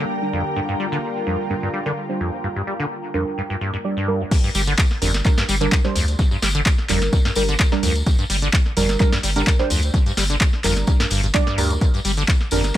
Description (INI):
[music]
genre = acid house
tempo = 128 BPM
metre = 4/4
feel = swing 53% on 16ths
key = G minor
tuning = A4 = 439 Hz
[part]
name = warm analog pad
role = sustained chords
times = 0.0-4.3 s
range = D3 to G4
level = -29 LUFS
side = equal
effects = chorus, sidechain pumping
[part]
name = liquid acid bass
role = riff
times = 0.0-12.6 s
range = F2 to G3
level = -25 LUFS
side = equal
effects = lush chorus, cassette tape, dub echo
[part]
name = ethereal airy pad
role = texture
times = 0.0-4.3 s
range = D4 to Bb5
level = -30 LUFS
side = equal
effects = ensemble chorus, built-in reverb, phaser, sidechain pumping
[part]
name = deep mellow chord stab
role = stabs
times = 0.2-12.8 s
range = G3 to D5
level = -25 LUFS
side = right 3 dB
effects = chorus, dub echo
[part]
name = booming analog drum machine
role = drums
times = 4.3-12.8 s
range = crash cymbal, handclaps, hi-hat, snare drum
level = -24 LUFS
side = equal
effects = none
[part]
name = electronic kick drum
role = drums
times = 4.3-12.8 s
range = none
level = -18 LUFS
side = equal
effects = none
[part]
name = tambourine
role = percussion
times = 4.3-12.7 s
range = none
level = -30 LUFS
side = left 2 dB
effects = none
[part]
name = saturated sub bass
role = bass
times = 4.5-12.7 s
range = G1 to D2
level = -22 LUFS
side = equal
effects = sidechain pumping
[sound]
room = light reverb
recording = none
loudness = -17 LUFS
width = side -13 dB against mid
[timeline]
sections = 0.0-4.3 A section; 4.3-12.8 B section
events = filter sweep on synth stab 0.0-4.3; drop 4.3-12.8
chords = 0.0 Gm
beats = 0.10 | 0.56 1.03 1.50 1.97 | 2.44 2.91 3.38 3.85 | 4.31 4.78 5.25 5.72 | 6.19 6.66 7.13 7.59 | 8.06 8.53 9.00 9.47 | 9.94 10.41 10.88 11.35 | 11.81 12.28 12.75